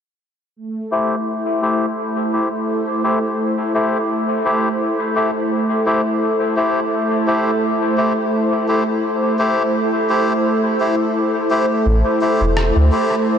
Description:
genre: ambient dub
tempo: 85 BPM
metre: 4/4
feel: swing 54% on 16ths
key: A minor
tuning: A4 = 440 Hz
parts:
  - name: warm analog pad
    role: sustained chords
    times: 0.6-13.4 s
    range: A3 to C5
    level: -19 LUFS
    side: right 1 dB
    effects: chorus
  - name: bubbling stepped-filter texture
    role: texture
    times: 2.1-13.4 s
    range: A4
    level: -29 LUFS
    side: left 1 dB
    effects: none
  - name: melodica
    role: stabs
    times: 0.9-13.2 s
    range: A3 to C5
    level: -19 LUFS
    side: left 2 dB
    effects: low-pass filter, dub echo
  - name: soft dub sub bass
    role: bass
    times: 11.9-12.9 s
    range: E1 to D2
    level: -15 LUFS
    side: equal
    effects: none
  - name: electronic rim click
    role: drums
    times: 12.6-12.7 s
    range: none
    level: -27 LUFS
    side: equal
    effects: overdrive, dub echo
room: wet huge ambient reverb, RT60 7.6 s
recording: dreamy mix soaked in reverb, nothing above 10.8 kHz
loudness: -16 LUFS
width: side -8 dB against mid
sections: 0.6-13.4 A section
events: filter sweep on melodica 0.6-13.4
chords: 0.6 Am7

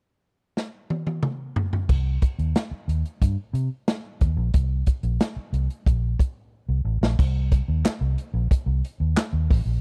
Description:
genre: funk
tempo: 91 BPM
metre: 4/4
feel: straight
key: C dorian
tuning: A4 = 440 Hz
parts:
  - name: swinging big-band drum kit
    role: drums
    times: 0.6-9.7 s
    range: crash cymbal, handclaps, hi-hat, kick drum, snare drum, toms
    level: -24 LUFS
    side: equal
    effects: none
  - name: vintage muted fingered electric bass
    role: bass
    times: 1.9-9.8 s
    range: A1 to C3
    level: -25 LUFS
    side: equal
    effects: none
room: little or no reverb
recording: dry, close 1970s-style studio recording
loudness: -24 LUFS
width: mono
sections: 0.0-1.9 A section; 1.9-7.2 B section; 7.2-9.8 C section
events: drum fill 0.6-1.9, 6.5-7.2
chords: none

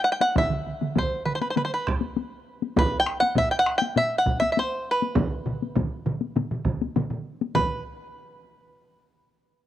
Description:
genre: japanese traditional, taiko drum ensemble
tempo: 100 BPM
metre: 4/4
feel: straight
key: B miyako bushi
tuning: A4 = 440 Hz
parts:
  - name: bluegrass banjo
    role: melody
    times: 0.0-7.8 s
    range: B4 to G5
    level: -24 LUFS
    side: right 1 dB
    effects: none
  - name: solo taiko drums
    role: percussion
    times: 0.2-7.8 s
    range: none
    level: -28 LUFS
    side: left 9 dB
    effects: none
  - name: taiko ensemble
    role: percussion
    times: 0.4-8.1 s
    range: none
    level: -31 LUFS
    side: right 6 dB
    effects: none
  - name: taiko ensemble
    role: percussion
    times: 0.4-7.8 s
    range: none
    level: -27 LUFS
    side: right 3 dB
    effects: none
  - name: solo taiko drums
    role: percussion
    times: 2.8-8.1 s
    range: none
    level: -31 LUFS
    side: left 2 dB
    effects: none
room: light reverb, small room reverb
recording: dry, close 1970s-style studio recording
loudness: -22 LUFS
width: side -12 dB against mid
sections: 0.0-7.5 A section; 7.5-9.7 B section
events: none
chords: none

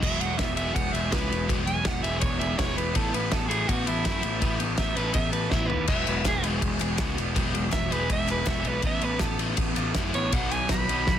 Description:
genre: indie rock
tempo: 163 BPM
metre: 4/4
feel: straight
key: E major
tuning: A4 = 440 Hz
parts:
  - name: raspy soprano saxophone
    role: melody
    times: 0.0-11.2 s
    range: E4 to B5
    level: -30 LUFS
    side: right 3 dB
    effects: none
  - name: dark analog pad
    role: sustained chords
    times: 0.0-11.2 s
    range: D#3 to B4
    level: -41 LUFS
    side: left 2 dB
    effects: none
  - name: biting overdriven guitar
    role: riff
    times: 0.0-11.2 s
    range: B2 to E4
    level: -34 LUFS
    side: left 7 dB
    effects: none
  - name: crunchy overdriven guitar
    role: riff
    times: 0.0-11.2 s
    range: F#3 to A4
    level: -33 LUFS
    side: right 9 dB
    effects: analog chorus
  - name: fuzz picked electric bass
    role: bass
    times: 0.0-11.2 s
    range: E1 to F#2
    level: -30 LUFS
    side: equal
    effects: overdrive
  - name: loose indie drum kit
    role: drums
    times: 0.0-11.2 s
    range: crash cymbal, kick drum, ride cymbal, snare drum, toms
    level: -27 LUFS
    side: left 1 dB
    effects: none
  - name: group handclap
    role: percussion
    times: 6.3-10.8 s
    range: none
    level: -40 LUFS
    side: left 11 dB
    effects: none
room: light reverb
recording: dense, heavily limited modern master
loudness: -23 LUFS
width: side -10 dB against mid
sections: 0.0-11.2 A section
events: soprano saxophone solo 0.0-11.2; drum fill 5.5-5.9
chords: 0.0 Eadd9; 3.0 Asus2; 5.9 Eadd9; 8.8 Asus2; 10.3 B

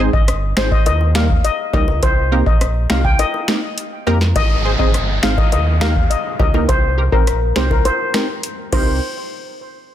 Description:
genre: dancehall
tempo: 103 BPM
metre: 4/4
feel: straight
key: C phrygian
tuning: A4 = 440 Hz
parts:
  - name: punchy chord stab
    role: accompaniment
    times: 0.0-9.0 s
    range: G3 to C5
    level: -22 LUFS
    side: right 2 dB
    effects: chorus, low-pass filter
  - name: sub bass with octave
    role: bass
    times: 0.0-9.0 s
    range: G1 to F2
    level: -18 LUFS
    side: equal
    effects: none
  - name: steel pan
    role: melody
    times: 0.1-9.0 s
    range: Bb4 to G5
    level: -21 LUFS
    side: left 4 dB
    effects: low-pass filter, ping-pong delay
  - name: booming analog drum machine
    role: drums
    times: 0.1-8.9 s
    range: crash cymbal, finger snaps, hi-hat, kick drum, rim click, snare drum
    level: -18 LUFS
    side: equal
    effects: overdrive
  - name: bongos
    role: percussion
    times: 0.6-9.0 s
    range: none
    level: -30 LUFS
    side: left 4 dB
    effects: none
  - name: downlifter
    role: sound effects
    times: 4.4-9.0 s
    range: none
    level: -27 LUFS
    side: right 1 dB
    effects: none
room: little or no reverb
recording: dense, heavily limited modern master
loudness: -14 LUFS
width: side -11 dB against mid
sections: 0.0-4.4 A section; 4.4-9.0 B section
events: break 3.2-4.4, 7.9-9.0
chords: 0.0 Ab; 0.9 Eb; 2.0 Cm7; 4.4 Ab; 5.5 Eb; 6.7 Cm7; 9.0 N.C.

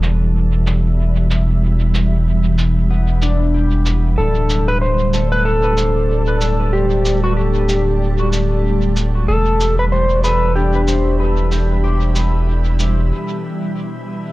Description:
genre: ambient dub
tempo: 94 BPM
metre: 4/4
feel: swing 59% on 16ths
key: E minor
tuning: A4 = 440 Hz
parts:
  - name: soft additive organ-like pad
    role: sustained chords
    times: 0.0-14.3 s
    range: B2 to B5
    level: -22 LUFS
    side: equal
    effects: ensemble chorus, built-in reverb, cassette tape
  - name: soft dub sub bass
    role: bass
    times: 0.0-13.1 s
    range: D1 to E1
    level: -16 LUFS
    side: equal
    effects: none
  - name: cabasa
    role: drums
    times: 0.0-12.9 s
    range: none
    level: -29 LUFS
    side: right 1 dB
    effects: low-pass filter on perc, cassette tape, low-pass filter on room, dub echo
  - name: concert harp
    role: arpeggios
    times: 2.9-6.0, 9.9-14.2 s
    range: G3 to G4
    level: -26 LUFS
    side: left 6 dB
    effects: low-pass filter, cassette tape, tape echo
  - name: clean lap steel guitar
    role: melody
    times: 4.2-13.1 s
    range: F#4 to C5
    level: -20 LUFS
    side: left 1 dB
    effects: vintage 12-bit sampler grit, cassette tape, tape echo
room: light reverb, digital ambience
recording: home recording on cassette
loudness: -14 LUFS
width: side -18 dB against mid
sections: 0.0-14.3 A section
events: filter sweep on ambient pad 0.0-14.3; break 13.1-14.3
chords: 0.0 Em; 4.2 Dsus4; 9.3 Em

